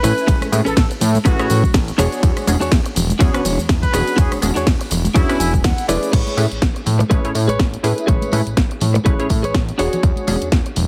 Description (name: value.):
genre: filtered disco house.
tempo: 123 BPM.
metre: 4/4.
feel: swing 57% on 16ths.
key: A major.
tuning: A4 = 440 Hz.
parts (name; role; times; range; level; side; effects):
clear trumpet section; melody; 0.0-5.5 s; E4 to B4; -27 LUFS; equal; vintage 12-bit sampler grit, sidechain pumping, low-pass filter, tape echo.
funky polysynth comp; accompaniment; 0.0-10.4 s; A3 to G#5; -26 LUFS; equal; chorus, phaser, sidechain pumping, low-pass filter.
direct-recorded clean electric guitar; riff; 0.0-10.7 s; C#4 to G#5; -26 LUFS; equal; sidechain pumping, low-pass filter.
fat analog bass; bass; 0.0-10.9 s; E1 to A2; -22 LUFS; equal; tube saturation, sidechain pumping, low-pass filter.
house drum kit; drums; 0.0-10.9 s; cabasa, crash cymbal, hi-hat, ride cymbal, rim click, snare drum; -26 LUFS; equal; sidechain pumping on hats, sidechain pumping on perc, sidechain pumping on cymbals.
congas and tambourine; percussion; 0.0-10.9 s; none; -28 LUFS; equal; sidechain pumping on perc, low-pass filter on perc.
electronic kick drum; drums; 0.3-10.6 s; none; -19 LUFS; equal; none.
room: light reverb.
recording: heavily compressed radio sound.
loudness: -17 LUFS.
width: mono.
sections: 0.0-6.1 A section; 6.1-10.9 B section.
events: drop 0.0-6.1; clean electric guitar fill 5.2-6.1.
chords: 0.0 Amaj9; 2.0 E13; 6.1 Amaj9; 9.8 E13.